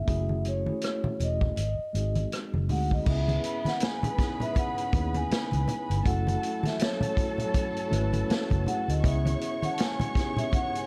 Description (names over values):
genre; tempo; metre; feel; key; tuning
lush 1970s-style soul; 80 BPM; 4/4; swing 58% on 16ths; C# minor; A4 = 438 Hz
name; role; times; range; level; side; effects
vibraphone with soft mallets; melody; 0.0-10.9 s; C#5 to A5; -36 LUFS; equal; none
mellow tine electric piano; accompaniment; 0.0-10.9 s; G#3 to B4; -37 LUFS; equal; none
vintage muted fingered electric bass; bass; 0.1-9.3 s; E1 to D#2; -30 LUFS; equal; none
vintage drum kit; drums; 0.1-10.9 s; crash cymbal, hi-hat, kick drum, rim click, snare drum; -32 LUFS; equal; none
congas; percussion; 0.1-10.7 s; none; -36 LUFS; equal; none
warm studio violin section; second line; 3.1-10.9 s; A4 to C#6; -41 LUFS; equal; none
dark studio string section; sustained chords; 3.1-10.9 s; C#3 to A4; -43 LUFS; equal; none
room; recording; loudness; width
studio ambience; dark, warm production; -28 LUFS; mono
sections
0.0-3.1 A section; 3.1-10.9 B section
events
none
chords
0.1 F#m7; 1.6 G#7; 3.1 C#m7; 6.1 F#m7; 9.0 C#m7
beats
| 0.08 0.83 1.58 2.32 | 3.07 3.82 4.56 5.31 | 6.05 6.80 7.54 8.29 | 9.04 9.78 10.53